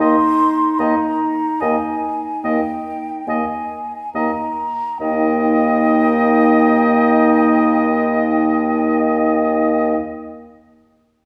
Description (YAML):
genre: classical, slow romantic movement for wind quintet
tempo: 33-38 BPM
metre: 4/4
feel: rubato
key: Eb major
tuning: A4 = 443 Hz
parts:
  - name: mellow hollow concert flute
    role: melody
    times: 0.0-10.0 s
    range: G5 to C6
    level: -25 LUFS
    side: equal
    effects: none
  - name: warm oboe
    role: second line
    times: 0.0-10.0 s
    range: Eb5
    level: -24 LUFS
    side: equal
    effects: none
  - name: mellow French horn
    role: accompaniment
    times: 0.0-10.0 s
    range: Bb3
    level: -23 LUFS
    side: equal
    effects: none
  - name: mellow clarinet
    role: accompaniment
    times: 0.0-10.0 s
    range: Eb4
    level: -23 LUFS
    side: equal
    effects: none
  - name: warm bassoon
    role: bass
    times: 0.0-10.0 s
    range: Eb2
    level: -22 LUFS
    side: equal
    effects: none
room: wet recital hall reverb, RT60 1.6 s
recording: heard from further back in the room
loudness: -17 LUFS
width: mono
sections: 0.0-5.0 A section; 5.0-11.3 B section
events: slowing down 0.0-5.0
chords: 0.0 Eb5; 5.0 Eb